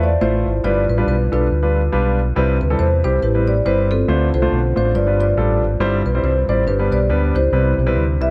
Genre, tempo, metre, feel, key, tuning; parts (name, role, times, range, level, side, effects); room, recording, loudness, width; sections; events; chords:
uptempo gospel; 139 BPM; 4/4; swing 58% on 8ths; C major; A4 = 440 Hz
marimba with soft mallets; melody; 0.0-8.3 s; C4 to E5; -23 LUFS; equal; analog delay
warm concert grand piano; accompaniment; 0.0-8.3 s; G2 to D5; -23 LUFS; equal; analog delay
fingered electric bass; bass; 0.0-8.3 s; G1 to E2; -21 LUFS; equal
light reverb, studio reverb; echo-heavy mix; -17 LUFS; mono
0.0-8.3 A section
0.0 Fmaj7; 0.6 G7; 2.4 Cmaj7; 4.1 Dm7; 4.9 G7; 5.8 C/G; 6.7 G; 7.5 Cmaj7